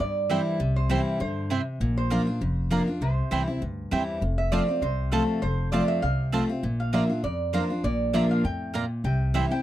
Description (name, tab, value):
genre	bluegrass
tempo	199 BPM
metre	4/4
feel	swing 54% on 8ths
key	unclear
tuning	A4 = 440 Hz
part	lap resonator guitar	melody	0.0-9.6 s	A4 to G5	-31 LUFS	right 2 dB	none
part	picked steel-string acoustic guitar	accompaniment	0.0-9.6 s	F2 to F4	-27 LUFS	left 1 dB	none
part	upright bass	bass	0.0-9.4 s	F1 to G2	-28 LUFS	equal	none
part	mandolin	stabs	0.3-9.4 s	Bb3 to Bb5	-29 LUFS	right 5 dB	none
room	little or no reverb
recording	dry, close 1970s-style studio recording, faint mains hum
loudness	-23 LUFS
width	side -13 dB against mid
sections	0.0-4.2 A section; 4.2-9.6 B section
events	none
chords	0.0 C; 1.8 Bb; 3.0 C; 4.2 F; 6.6 Bb; 9.0 C